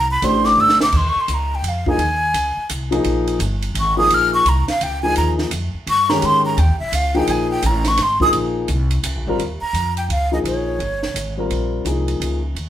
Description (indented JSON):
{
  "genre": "modal jazz",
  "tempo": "170 BPM",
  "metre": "3/4",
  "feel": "swing 64% on 8ths",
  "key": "Eb mixolydian",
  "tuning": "A4 = 440 Hz",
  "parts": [
    { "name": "breathy mellow silver concert flute", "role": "melody", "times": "0.0-11.3 s", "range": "Db5 to F6", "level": "-18 LUFS", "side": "equal", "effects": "none" },
    { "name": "upright bass", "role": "bass", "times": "0.0-12.7 s", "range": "G1 to Ab2", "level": "-22 LUFS", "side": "equal", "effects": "none" },
    { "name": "warm concert grand piano", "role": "accompaniment", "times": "0.2-12.4 s", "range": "Eb3 to C5", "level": "-21 LUFS", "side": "left 2 dB", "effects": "none" },
    { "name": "compact cocktail drum kit", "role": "drums", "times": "0.2-12.7 s", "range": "crash cymbal, hi-hat, kick drum, ride cymbal, snare drum", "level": "-27 LUFS", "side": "right 2 dB", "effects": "none" }
  ],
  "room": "moderate studio reverb, RT60 0.6 s",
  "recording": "band playing live in one room",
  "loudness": "-16 LUFS",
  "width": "side -11 dB against mid",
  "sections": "0.9-9.4 A section; 9.4-12.7 B section",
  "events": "flute solo 0.0-9.4; drum fill 0.6-0.9",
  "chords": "0.0 Csus2; 0.9 Eb9sus4",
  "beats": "0.23 0.58 | 0.93 1.29 1.64 | 1.99 2.34 2.70 | 3.05 3.40 3.75 | 4.11 4.46 4.81 | 5.16 5.51 5.87 | 6.22 6.57 6.92 | 7.28 7.63 7.98 | 8.33 8.69 9.04 | 9.39 9.74 10.10 | 10.45 10.80 11.15 | 11.51 11.86 12.21 | 12.57"
}